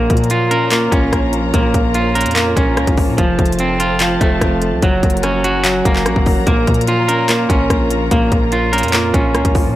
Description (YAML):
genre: hip hop, trap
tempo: 146 BPM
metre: 4/4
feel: half-time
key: Bb harmonic minor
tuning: A4 = 440 Hz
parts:
  - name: dark concert grand piano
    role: accompaniment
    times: 0.0-9.8 s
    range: Bb2 to Gb5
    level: -22 LUFS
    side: left 2 dB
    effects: low-pass filter
  - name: dark studio string section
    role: sustained chords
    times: 0.0-9.8 s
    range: F4 to Bb5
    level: -25 LUFS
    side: left 1 dB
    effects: none
  - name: semi-hollow electric guitar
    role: arpeggios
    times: 0.0-9.8 s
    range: F3 to Bb4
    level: -16 LUFS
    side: right 2 dB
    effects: low-pass filter, tape echo
  - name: distorted 808-style bass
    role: bass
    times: 0.0-9.8 s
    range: F1 to Bb2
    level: -21 LUFS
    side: equal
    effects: distortion
  - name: trap drum kit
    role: drums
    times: 0.1-9.6 s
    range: handclaps, hi-hat, kick drum, rim click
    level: -16 LUFS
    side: equal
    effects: none
room: digital ambience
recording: dry, gritty hardware recording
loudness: -12 LUFS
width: side -14 dB against mid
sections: 0.0-9.8 A section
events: none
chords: 0.0 Bbm; 3.2 F; 4.8 Gb; 6.5 Bbm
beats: 0.31 0.72 1.13 | 1.54 1.95 2.36 2.77 | 3.18 3.59 4.00 4.42 | 4.83 5.24 5.65 6.06 | 6.47 6.88 7.29 7.70 | 8.11 8.53 8.94 9.35